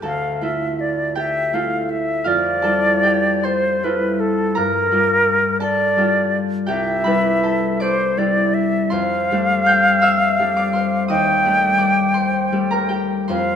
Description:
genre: classical, impressionist duo for flute and harp.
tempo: 49-58 BPM (dotted quarters).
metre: 6/8.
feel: rubato.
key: D minor.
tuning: A4 = 440 Hz.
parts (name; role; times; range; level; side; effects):
concert harp; accompaniment; 0.0-13.6 s; C2 to G6; -19 LUFS; left 1 dB; none.
bright concert flute; melody; 0.1-13.6 s; A4 to G5; -18 LUFS; equal; none.
room: moderate scoring stage reverb, RT60 1.8 s.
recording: none.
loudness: -16 LUFS.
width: side -8 dB against mid.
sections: 0.0-13.6 A section.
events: none.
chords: 0.0 Dmadd9; 2.3 Fmaj9; 4.6 Gm7; 6.7 Cadd9; 8.9 F69; 11.1 Ebmaj7#11.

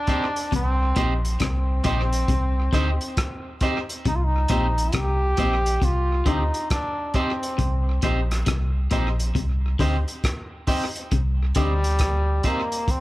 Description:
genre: roots reggae.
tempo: 68 BPM.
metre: 4/4.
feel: swing 63% on 16ths.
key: C minor.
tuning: A4 = 440 Hz.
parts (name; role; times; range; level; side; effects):
brilliant trombone; melody; 0.0-13.0 s; G3 to G4; -26 LUFS; equal; tape echo.
clean electric guitar; accompaniment; 0.1-12.6 s; C4 to C5; -30 LUFS; right 2 dB; tape echo.
warm upright piano; stabs; 0.1-12.8 s; G4 to Eb5; -33 LUFS; left 3 dB; none.
crunchy breakbeat drum kit; drums; 0.1-13.0 s; hi-hat, kick drum, rim click; -26 LUFS; equal; tape echo.
clean electric guitar; riff; 0.5-11.8 s; Bb2 to D3; -29 LUFS; left 4 dB; wide subtle chorus.
warm sub bass; bass; 0.5-12.4 s; Bb1 to D2; -23 LUFS; equal; none.
room: light reverb, small room ambience.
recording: none.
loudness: -20 LUFS.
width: side -17 dB against mid.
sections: 0.0-11.1 A section; 11.1-13.0 B section.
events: trombone solo 11.1-13.0.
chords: 0.0 Cm.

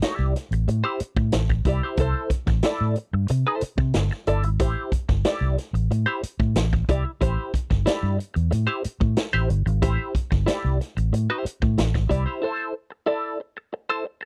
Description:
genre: funk.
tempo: 92 BPM.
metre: 4/4.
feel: straight.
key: A minor.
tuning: A4 = 440 Hz.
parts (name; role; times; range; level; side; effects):
clean electric guitar; accompaniment; 0.0-14.3 s; E4 to D5; -28 LUFS; equal; wah.
vintage drum kit; drums; 0.0-12.3 s; hi-hat, kick drum, snare drum; -27 LUFS; equal; none.
vintage muted fingered electric bass; bass; 0.2-12.2 s; G1 to C3; -25 LUFS; equal; none.
room: little or no reverb.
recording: dry, close 1970s-style studio recording.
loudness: -24 LUFS.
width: mono.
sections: 0.0-14.3 A section.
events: break 12.4-14.3.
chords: 0.0 Am7; 12.4 C6.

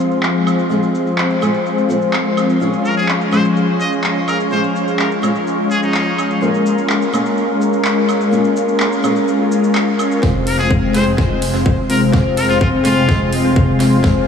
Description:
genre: EDM, festival progressive house.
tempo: 126 BPM.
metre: 4/4.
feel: straight.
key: F minor.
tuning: A4 = 441 Hz.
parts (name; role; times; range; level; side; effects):
fingerpicked old ladder-braced acoustic guitar; accompaniment; 0.0-14.3 s; Ab3 to Bb4; -20 LUFS; equal; wide subtle chorus, sidechain pumping, tape echo.
lush unison pad; sustained chords; 0.0-14.3 s; C3 to Bb4; -19 LUFS; left 2 dB; chorus, phaser, sidechain pumping.
supersaw chords; riff; 0.0-14.3 s; Ab3 to G5; -19 LUFS; left 2 dB; sidechain pumping, low-pass filter, tape echo.
big-room dance drum kit; drums; 0.0-14.1 s; handclaps, hi-hat, shaker, snare drum, woodblock; -23 LUFS; equal; overdrive, high-pass filter on perc, low-pass filter on perc, studio reverb, high-pass filter on snare, low-pass filter on snare, high-pass filter on hats, low-pass filter on hats.
trumpet with straight mute; melody; 2.8-6.3, 10.5-13.2 s; Eb4 to Eb5; -22 LUFS; left 1 dB; tape echo.
wide detuned saw bass; bass; 10.2-14.3 s; F1; -23 LUFS; right 1 dB; chorus, sidechain pumping.
electronic kick drum; drums; 10.2-14.1 s; none; -16 LUFS; equal; overdrive, studio reverb.
room: wet huge ambient reverb, RT60 3.9 s.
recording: dreamy mix soaked in reverb, small room ambience.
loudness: -13 LUFS.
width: side -7 dB against mid.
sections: 0.0-10.2 A section; 10.2-14.3 B section.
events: filter sweep on analog synth pad 0.0-10.2; build-up 10.2-14.3; drum fill 10.2-14.3; filter sweep on supersaw synth 10.2-14.3; filter sweep 10.2-14.3.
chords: 0.0 Fm; 2.6 Db; 6.4 Bbm7; 10.2 Fm.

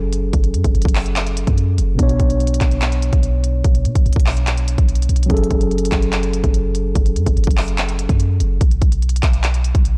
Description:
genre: hip hop, trap.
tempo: 145 BPM.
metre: 4/4.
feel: half-time.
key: F# minor.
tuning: A4 = 440 Hz.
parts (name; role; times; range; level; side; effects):
mellow tine electric piano; accompaniment; 0.0-8.6 s; B2 to C#5; -25 LUFS; equal; none.
clean 808-style bass; bass; 0.0-10.0 s; F#1 to B2; -20 LUFS; equal; transformer saturation.
trap drum kit; drums; 0.1-9.9 s; handclaps, hi-hat, kick drum; -20 LUFS; equal; none.
room: little or no reverb.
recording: blown-out, overdriven recording, overdrive.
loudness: -17 LUFS.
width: mono.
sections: 0.0-10.0 A section.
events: none.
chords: 0.0 F#madd9; 2.0 Bmadd9; 5.3 F#madd9; 8.6 N.C..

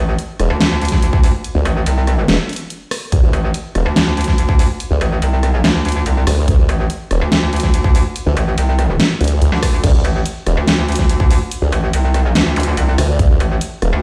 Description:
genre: heavy wobble dubstep.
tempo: 143 BPM.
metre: 4/4.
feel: half-time.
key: unclear.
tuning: A4 = 437 Hz.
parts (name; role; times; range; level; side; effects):
metallic wobble bass; bass; 0.0-14.0 s; A1 to D2; -18 LUFS; equal; distortion, chorus, overdrive.
big-room dance drum kit; drums; 0.2-13.9 s; crash cymbal, hi-hat, rim click, snare drum; -21 LUFS; equal; none.
formant-sweep wobble bass; bass; 0.4-13.9 s; E1 to D2; -17 LUFS; equal; chorus, overdrive.
electronic kick drum; drums; 0.9-13.3 s; none; -16 LUFS; equal; none.
zap; sound effects; 12.6-12.7 s; none; -28 LUFS; equal; none.
room: light reverb.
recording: played on a big sound system in a bare room, stone room reverb.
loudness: -15 LUFS.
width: mono.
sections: 0.0-14.0 A section.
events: none.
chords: 0.0 D5.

